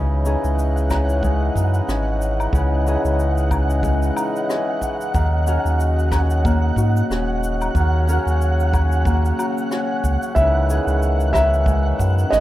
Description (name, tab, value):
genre	folktronica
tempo	92 BPM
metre	4/4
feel	swing 56% on 16ths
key	C# dorian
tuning	A4 = 441 Hz
part	pedal harmonium	sustained chords	0.0-12.4 s	C#3 to D#4	-25 LUFS	left 1 dB	vintage 12-bit sampler grit
part	Celtic harp	arpeggios	0.0-12.4 s	C#3 to A#4	-26 LUFS	left 2 dB	tape echo
part	warm sub bass	bass	0.0-12.4 s	D#1 to G#2	-19 LUFS	equal	none
part	flickering grainy texture	texture	0.6-12.4 s	F#5 to F#6	-28 LUFS	right 2 dB	built-in reverb
part	cabasa, woodblock and rim click	drums	0.3-12.4 s	none	-30 LUFS	left 1 dB	none
part	kick drum	drums	0.9-12.1 s	none	-25 LUFS	equal	none
part	felt-muted upright piano	melody	10.3-12.4 s	D#5 to E5	-20 LUFS	right 1 dB	none
room	light reverb, small room ambience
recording	rough home demo mix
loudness	-17 LUFS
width	side -14 dB against mid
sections	0.0-12.4 A section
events	none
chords	0.0 C#madd9; 5.1 D#m7; 10.4 C#madd9